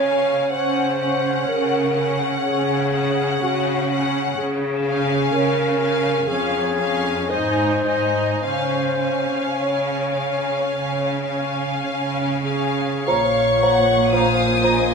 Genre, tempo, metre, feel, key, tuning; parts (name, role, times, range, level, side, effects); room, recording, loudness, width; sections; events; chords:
classical; 44-64 BPM; 4/4; rubato; Db major; A4 = 440 Hz
warm studio violin section; melody; 0.0-14.9 s; Gb5 to Eb6; -28 LUFS; left 5 dB
dark clarinet; second line; 0.0-14.9 s; Gb4 to Db5; -22 LUFS; left 1 dB
rich studio violin section; second line; 0.0-14.9 s; Eb5 to Ab5; -27 LUFS; left 4 dB
rich studio viola section; accompaniment; 0.0-13.1 s; Db4 to Eb4; -25 LUFS; right 1 dB
bright studio cello section; bass; 0.0-14.9 s; F2 to Db3; -25 LUFS; right 4 dB
mellow hollow flute section; second line; 13.1-14.7 s; Bb5; -26 LUFS; right 3 dB
mellow bassoon; accompaniment; 13.1-14.8 s; F3; -25 LUFS; equal
mellow French horn section; sustained chords; 13.1-14.9 s; Bb3 to F4; -24 LUFS; left 3 dB
rich studio double bass section; bass; 13.1-14.9 s; Bb1; -26 LUFS; right 4 dB
moderate scoring stage reverb, RT60 1.9 s; minimal, uncompressed stereo recording, lossy compression artefacts; -18 LUFS; side -5 dB against mid
0.0-13.1 A section; 13.1-14.9 B section
0.0 Db; 6.3 Db/F; 7.3 Ab; 8.4 Db; 13.1 Bbm